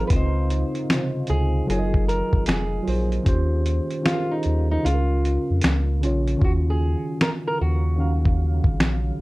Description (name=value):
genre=lo-fi hip hop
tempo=76 BPM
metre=4/4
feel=swing 65% on 16ths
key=unclear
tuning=A4 = 444 Hz
part: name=nylon-string guitar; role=melody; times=0.0-9.1 s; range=Eb4 to C5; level=-29 LUFS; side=equal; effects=low-pass filter, analog delay
part: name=mellow tine electric piano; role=accompaniment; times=0.0-9.2 s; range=C3 to F5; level=-26 LUFS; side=right 1 dB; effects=medium stereo tremolo, cassette tape, low-pass filter
part: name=deep dark ambient pad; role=sustained chords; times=0.0-9.2 s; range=Db3 to F5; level=-35 LUFS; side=left 1 dB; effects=chorus, built-in reverb, low-pass filter
part: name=soft dub sub bass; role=bass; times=0.0-9.2 s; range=F1 to F2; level=-22 LUFS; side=equal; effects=none
part: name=dusty soul sampler-style drum kit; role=drums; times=0.1-9.0 s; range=finger snaps, hi-hat, kick drum, snare drum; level=-22 LUFS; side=equal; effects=none
room=light reverb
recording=dark, warm production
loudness=-20 LUFS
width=side -20 dB against mid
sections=0.0-6.4 A section; 6.4-9.2 B section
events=kick muted 4.8-6.4; hi-hats muted 6.4-9.2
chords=0.1 Dbmaj9; 1.7 Gbmaj13; 3.3 Eb13; 4.8 Db6; 6.4 Ebm9